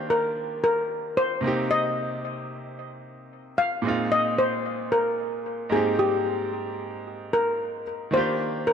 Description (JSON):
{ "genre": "amapiano", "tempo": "112 BPM", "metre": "4/4", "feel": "straight", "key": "Eb major", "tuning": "A4 = 440 Hz", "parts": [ { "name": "steel pan", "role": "melody", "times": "0.0-8.7 s", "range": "G4 to F5", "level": "-24 LUFS", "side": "left 1 dB", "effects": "ping-pong delay" }, { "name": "bright baby grand piano", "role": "accompaniment", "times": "0.0-8.7 s", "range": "Ab2 to G4", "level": "-30 LUFS", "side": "right 2 dB", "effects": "none" } ], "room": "moderate lush hall reverb, RT60 2.5 s", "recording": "dark, warm production", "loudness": "-23 LUFS", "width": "side -7 dB against mid", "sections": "0.0-8.7 A section", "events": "none", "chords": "0.0 Ebmaj9; 1.4 Cm7; 3.8 Bb9sus4; 5.7 Abmaj7; 8.1 Ebmaj9", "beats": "0.10 0.63 1.17 | 1.70 2.24 2.77 3.31 | 3.85 4.38 4.92 5.45 | 5.99 6.52 7.06 7.59 | 8.13 8.67" }